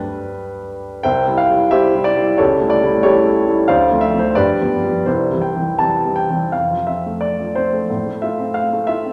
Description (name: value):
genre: classical, romantic character piece for solo piano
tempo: 81-94 BPM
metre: 2/4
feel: rubato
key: C major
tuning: A4 = 440 Hz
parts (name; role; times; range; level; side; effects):
- warm baby grand piano; solo; 0.0-9.1 s; C2 to A5; -17 LUFS; equal; none
room: wet recital hall reverb, RT60 1.6 s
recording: none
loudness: -17 LUFS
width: mono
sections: 0.0-6.5 A section; 6.5-9.1 B section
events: none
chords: 0.0 G; 1.0 C; 2.4 A7/C#; 3.7 Dm7; 4.4 G7; 5.1 C; 6.5 F; 7.9 F/A